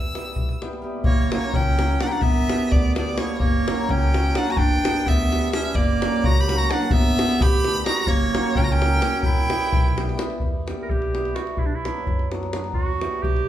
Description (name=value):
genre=balkan folk, Balkan wedding band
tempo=256 BPM (eighths)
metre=5/8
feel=straight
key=E dorian sharp4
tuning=A4 = 440 Hz
part: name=warm violin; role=melody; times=0.0-10.2 s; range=C#5 to E6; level=-26 LUFS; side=equal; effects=none
part: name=upright bass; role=bass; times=0.0-13.5 s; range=E1 to F#2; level=-26 LUFS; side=equal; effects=none
part: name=davul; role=percussion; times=0.0-13.4 s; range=none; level=-23 LUFS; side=left 1 dB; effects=none
part: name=cimbalom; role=accompaniment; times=0.1-13.5 s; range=F#3 to G4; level=-29 LUFS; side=left 1 dB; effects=none
part: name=bright clarinet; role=second line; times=1.0-13.5 s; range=A#3 to A#4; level=-25 LUFS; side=right 3 dB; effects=none
room=wet large studio reverb, RT60 1.2 s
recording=band playing live in one room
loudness=-19 LUFS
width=side -12 dB against mid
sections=0.0-1.0 A section; 1.0-10.4 B section; 10.4-13.5 C section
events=clarinet solo 10.4-13.5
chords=0.0 Em; 1.0 F#; 2.2 G; 3.4 F#; 4.6 G; 5.7 F#; 6.9 G; 8.1 F#; 9.2 Em; 11.6 Bm; 12.7 Em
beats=0.10 0.33 0.57 0.81 | 1.04 1.28 1.51 1.75 1.98 | 2.22 2.45 2.69 2.92 3.16 | 3.39 3.63 3.86 4.09 4.33 | 4.56 4.80 5.03 5.27 5.50 | 5.74 5.97 6.20 6.44 6.67 | 6.91 7.14 7.37 7.61 7.84 | 8.07 8.31 8.54 8.77 9.01 | 9.24 9.47 9.71 9.94 10.18 | 10.41 10.64 10.88 11.11 11.35 | 11.58 11.81 12.05 12.28 12.51 | 12.75 12.98 13.21 13.45